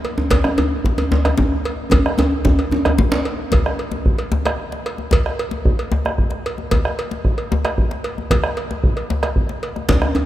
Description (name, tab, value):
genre	west african traditional, West African drum ensemble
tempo	150 BPM (dotted quarters)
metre	12/8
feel	straight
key	none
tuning	none
part	cowbell	percussion	0.0-10.3 s	none	-26 LUFS	right 2 dB	none
part	djembe	percussion	0.0-10.0 s	none	-24 LUFS	left 2 dB	none
part	djembe	percussion	0.2-3.2, 9.9-10.3 s	none	-19 LUFS	equal	none
part	bombo	percussion	0.3-10.1 s	none	-20 LUFS	equal	none
room	moderate cathedral reverb, RT60 5.7 s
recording	in a vast, echoing space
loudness	-16 LUFS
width	side -13 dB against mid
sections	0.0-3.5 A section; 3.5-10.3 B section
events	drum fill 1.9-3.5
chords	none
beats	| 0.31 0.72 1.12 1.52 | 1.92 2.32 2.72 3.12 | 3.52 3.92 4.32 4.72 | 5.12 5.52 5.92 6.32 | 6.71 7.11 7.51 7.91 | 8.30 8.70 9.10 9.49 | 9.89